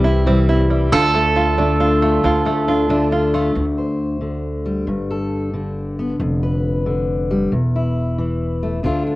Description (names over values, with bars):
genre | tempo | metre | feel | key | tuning
acoustic folk duo or small band | 46 BPM (dotted quarters) | 6/8 | straight | D dorian | A4 = 438 Hz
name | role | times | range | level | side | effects
bowl-back mandolin | second line | 0.0-3.1 s | G4 to A4 | -20 LUFS | right 4 dB | cassette tape
fingerpicked steel-string acoustic guitar | accompaniment | 0.0-9.2 s | D2 to C5 | -19 LUFS | left 2 dB | cassette tape
open-back banjo | arpeggios | 0.0-3.6 s | D3 to F4 | -21 LUFS | right 2 dB | cassette tape
upright bass | bass | 0.0-9.2 s | E1 to D2 | -22 LUFS | equal | none
room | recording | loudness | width
light reverb | home recording on cassette | -16 LUFS | side -18 dB against mid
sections
0.0-3.6 A section; 3.6-9.2 B section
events
none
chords
0.0 C; 0.9 Dm; 4.9 Gadd9; 6.2 Dm/F; 7.5 A5/E